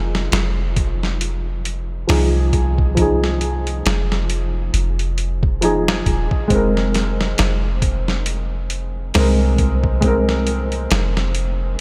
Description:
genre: trip hop.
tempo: 68 BPM.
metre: 4/4.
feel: swing 57% on 16ths.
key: F minor.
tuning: A4 = 440 Hz.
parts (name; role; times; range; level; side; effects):
felt-muted upright piano; accompaniment; 0.0-11.8 s; F3 to Bb4; -24 LUFS; equal; harmonic tremolo, low-pass filter, tape echo.
soft 808-style bass; bass; 0.0-11.8 s; Eb1 to C2; -22 LUFS; equal; none.
boom bap sampler-style drum kit; drums; 0.1-11.6 s; hi-hat, kick drum, snare drum; -24 LUFS; equal; small room ambience.
room: moderate cathedral reverb, RT60 5.0 s.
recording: dreamy mix soaked in reverb.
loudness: -19 LUFS.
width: mono.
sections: 0.0-11.8 A section.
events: filter sweep on felt piano 0.0-11.8.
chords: 0.0 Fm7; 6.5 Abadd9/F.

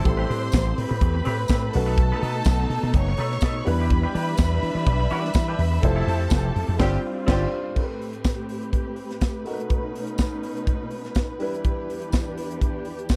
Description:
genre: disco.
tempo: 124 BPM.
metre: 4/4.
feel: straight.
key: A minor.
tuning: A4 = 440 Hz.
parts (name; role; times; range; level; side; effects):
bright studio violin section; second line; 0.0-7.5 s; G4 to C#6; -33 LUFS; equal; none.
semi-hollow electric guitar; accompaniment; 0.0-7.5 s; C4 to B4; -36 LUFS; equal; lush chorus.
warm baby grand piano; accompaniment; 0.0-13.2 s; G3 to C5; -34 LUFS; equal; none.
warm studio string section; sustained chords; 0.0-13.2 s; E2 to E5; -34 LUFS; equal; none.
slap bass with an envelope filter; bass; 0.1-7.4 s; F1 to E3; -26 LUFS; equal; tube saturation.
tight funk drum kit; drums; 0.1-13.2 s; crash cymbal, hi-hat, kick drum, snare drum; -25 LUFS; equal; none.
tambourine; percussion; 0.5-13.2 s; none; -43 LUFS; equal; none.
room: studio ambience.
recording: dark, warm production.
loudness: -24 LUFS.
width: mono.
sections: 0.0-7.8 A section; 7.8-13.2 B section.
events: band accent 6.8-7.8.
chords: 0.0 Am9; 1.7 B7; 3.7 Em7; 5.8 Fmaj7; 6.8 G7sus4; 7.8 Am9; 9.5 B7; 11.4 Em7.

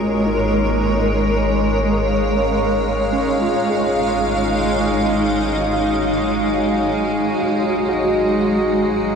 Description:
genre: ambient.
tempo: 63 BPM.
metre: 4/4.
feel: straight.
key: unclear.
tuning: A4 = 440 Hz.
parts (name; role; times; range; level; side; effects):
granular cloud pad; sustained chords; 0.0-9.2 s; G#3 to A#5; -17 LUFS; equal; built-in reverb.
tine electric piano; arpeggios; 0.0-9.2 s; C#4 to G#4; -25 LUFS; equal; overdrive, fast stereo tremolo, diffuse ambient delay.
warm sub bass; bass; 0.0-9.2 s; G#1; -26 LUFS; equal; none.
hand-pumped harmonium; drone; 0.0-9.2 s; G#3 to D#4; -25 LUFS; right 1 dB; none.
room: wet shimmer reverb, RT60 7.1 s.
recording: cassette tape.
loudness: -16 LUFS.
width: side -6 dB against mid.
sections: 0.0-9.2 A section.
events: fade-in on tine electric piano 0.0-9.2; fade-in on harmonium 0.0-9.2; fade-out on sub bass 0.0-9.2.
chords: 0.0 G#9sus4.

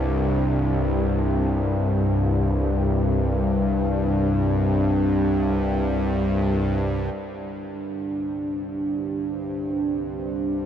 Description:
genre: dark ambient drone.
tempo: free time.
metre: none.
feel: none.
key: unclear.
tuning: A4 = 440 Hz.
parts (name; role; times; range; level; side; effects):
bowed-like drone; drone; 0.0-10.7 s; C2 to G2; -21 LUFS; equal; built-in reverb.
deep dark ambient pad; sustained chords; 7.5-10.7 s; D4 to C5; -26 LUFS; right 3 dB; chorus, built-in reverb.
room: wet huge ambient reverb, RT60 7.5 s.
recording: dark, warm production.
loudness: -21 LUFS.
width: side -9 dB against mid.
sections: 0.0-7.1 A section; 7.1-10.7 B section.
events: filter sweep on synth drone 0.0-7.1; fade-in on synth drone 7.1-10.7.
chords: 0.0 C5.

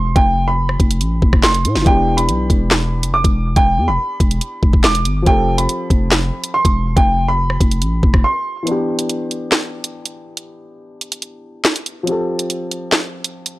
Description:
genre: hip hop, drill.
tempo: 141 BPM.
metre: 4/4.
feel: half-time.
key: E phrygian.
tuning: A4 = 445 Hz.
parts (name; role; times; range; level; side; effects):
warm upright piano; melody; 0.0-8.6 s; G5 to D6; -19 LUFS; right 2 dB; none.
dark concert grand piano; accompaniment; 0.0-13.6 s; E3 to A4; -24 LUFS; left 1 dB; low-pass filter.
growling 808-style bass; bass; 0.0-8.2 s; E1 to A2; -18 LUFS; equal; none.
drill drum kit; drums; 0.2-13.6 s; handclaps, hi-hat, kick drum, rim click, snare drum; -15 LUFS; equal; none.
room: digital ambience.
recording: dry, gritty hardware recording.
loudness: -14 LUFS.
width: side -18 dB against mid.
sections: 0.0-8.7 A section; 8.7-13.6 B section.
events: break 8.2-8.7, 8.7-13.6; filter sweep on grand piano 8.7-13.6.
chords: 0.0 Fadd9; 1.9 Em7; 5.3 Fadd9; 8.7 Em7; 12.1 Fadd9.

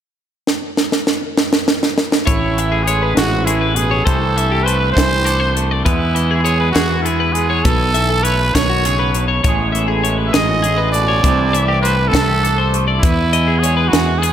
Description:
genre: math rock and midwest emo.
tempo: 67 BPM (dotted quarters).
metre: 6/8.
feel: straight.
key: unclear.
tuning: A4 = 440 Hz.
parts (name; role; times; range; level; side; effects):
crisp fusion drum kit; drums; 0.5-14.3 s; hi-hat, kick drum, snare drum; -18 LUFS; equal; none.
growling trumpet; melody; 2.3-14.3 s; E4 to E5; -19 LUFS; right 3 dB; slapback echo.
twangy electric guitar; accompaniment; 2.3-14.3 s; E2 to G#4; -23 LUFS; right 7 dB; phaser, slapback echo.
twelve-string electric guitar; arpeggios; 2.3-14.3 s; F#4 to E5; -21 LUFS; left 6 dB; slapback echo.
fuzz fingered electric bass; bass; 2.3-14.3 s; A1 to E2; -18 LUFS; left 1 dB; overdrive.
room: moderate lush hall reverb, RT60 1.9 s, small room ambience.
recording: big arena sound.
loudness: -13 LUFS.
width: side -9 dB against mid.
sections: 0.5-2.3 A section; 2.3-14.3 B section.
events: drum fill 0.5-2.3.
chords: 0.5 N.C.; 2.3 Amaj9; 4.1 C69; 5.9 E; 7.7 B7sus4; 9.4 Amaj9; 11.2 C69; 13.0 Eadd9.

